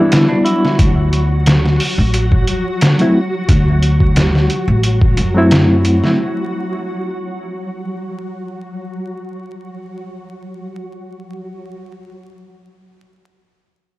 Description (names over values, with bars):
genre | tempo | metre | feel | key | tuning
trip hop | 89 BPM | 4/4 | swing 53% on 16ths | unclear | A4 = 441 Hz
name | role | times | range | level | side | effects
bright reed electric piano | accompaniment | 0.0-6.2 s | F#3 to E4 | -15 LUFS | equal | harmonic tremolo, tape echo
semi-hollow electric guitar | arpeggios | 0.0-0.8 s | E3 to E4 | -22 LUFS | right 1 dB | low-pass filter, tape echo
flickering grainy texture | texture | 0.0-11.6 s | F#3 to F#4 | -23 LUFS | equal | built-in reverb
trip hop sampler-style drum kit | drums | 0.1-6.2 s | hi-hat, kick drum, snare drum | -15 LUFS | equal | overdrive, studio reverb
upright bass | bass | 0.8-6.0 s | A1 to F#2 | -14 LUFS | equal | none
room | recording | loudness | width
digital ambience | dry, gritty hardware recording, vinyl crackle | -12 LUFS | side -18 dB against mid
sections
0.0-14.0 A section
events
none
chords
0.0 Cmaj7 (rootless); 0.8 D7; 6.2 N.C.